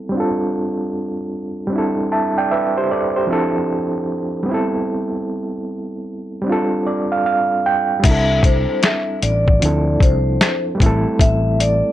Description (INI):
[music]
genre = lo-fi hip hop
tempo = 76 BPM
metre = 4/4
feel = swing 65% on 16ths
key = C major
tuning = A4 = 440 Hz
[part]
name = overdriven reed electric piano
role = accompaniment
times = 0.0-11.9 s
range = F3 to A5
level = -19 LUFS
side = right 2 dB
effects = fast tremolo, low-pass filter
[part]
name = vibraphone with soft mallets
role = melody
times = 8.0-11.9 s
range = C5 to E5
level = -21 LUFS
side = left 1 dB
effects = none
[part]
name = mellow fretless electric bass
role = bass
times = 8.0-11.8 s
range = A1 to D2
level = -18 LUFS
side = left 1 dB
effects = none
[part]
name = lo-fi sampler-style drum kit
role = drums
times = 8.0-11.8 s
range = crash cymbal, hi-hat, kick drum, snare drum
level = -15 LUFS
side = left 1 dB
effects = none
[sound]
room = moderate studio reverb, RT60 0.5 s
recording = none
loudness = -16 LUFS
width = side -13 dB against mid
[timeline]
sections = 0.0-8.0 A section; 8.0-11.9 B section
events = filter sweep on reed electric piano 0.0-8.0; reed electric piano fill 6.5-8.0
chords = 0.1 G7sus4; 1.7 C6; 3.3 Dm7; 4.5 Am7; 6.5 G7sus4; 8.0 C6; 9.6 Dm7; 10.8 Am7